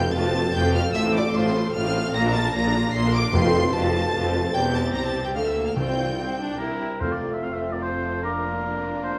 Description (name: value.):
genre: quick classical-period movement for symphony orchestra.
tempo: 149 BPM.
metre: 3/4.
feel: straight.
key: F major.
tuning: A4 = 440 Hz.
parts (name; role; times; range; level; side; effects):
rich chamber violin section; melody; 0.0-9.2 s; F4 to D7; -34 LUFS; equal; none.
rich chamber viola section; accompaniment; 0.0-9.2 s; A3 to Bb4; -30 LUFS; equal; none.
clear studio cello section; bass; 0.0-9.2 s; C2 to Bb2; -30 LUFS; equal; none.
rich chamber double bass section; bass; 0.0-9.2 s; E1 to D2; -31 LUFS; equal; none.
timpani; percussion; 0.0-0.3, 3.3-7.6 s; F2 to C3; -31 LUFS; equal; none.
rich chamber violin section; second line; 0.1-9.2 s; F4 to D6; -33 LUFS; equal; none.
warm oboe; second line; 6.6-9.2 s; Bb4 to F5; -31 LUFS; equal; none.
mellow clarinet; second line; 7.0-8.4 s; A4 to Bb4; -42 LUFS; equal; none.
mellow concert flute; second line; 7.0-8.4 s; D6 to F6; -40 LUFS; equal; none.
mellow French horn section; sustained chords; 7.0-9.2 s; A3 to F4; -34 LUFS; equal; none.
room: moderate scoring stage reverb, RT60 2.2 s.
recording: small room reverb.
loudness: -23 LUFS.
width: mono.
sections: 0.0-7.0 A section; 7.0-9.2 B section.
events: none.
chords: 0.0 F; 0.9 F/A; 2.1 Bb; 3.3 F; 4.5 C/E; 5.4 D5; 5.8 Csus4; 6.6 C; 7.0 F; 8.2 Bb/F.